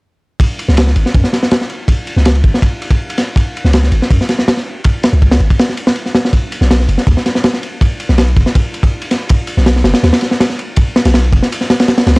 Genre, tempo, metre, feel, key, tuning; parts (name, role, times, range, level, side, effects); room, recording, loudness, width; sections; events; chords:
drum and bass, jungle; 162 BPM; 4/4; straight; A4 = 440 Hz
crunchy breakbeat drum kit; drums; 0.4-12.2 s; kick drum, ride cymbal, snare drum; -12 LUFS; equal
long sustained 808-style bass; bass; 0.7-12.2 s; F#1 to F#2; -11 LUFS; equal
little or no reverb; dry, gritty hardware recording, cassette tape; -10 LUFS; side -31 dB against mid
0.4-12.2 A section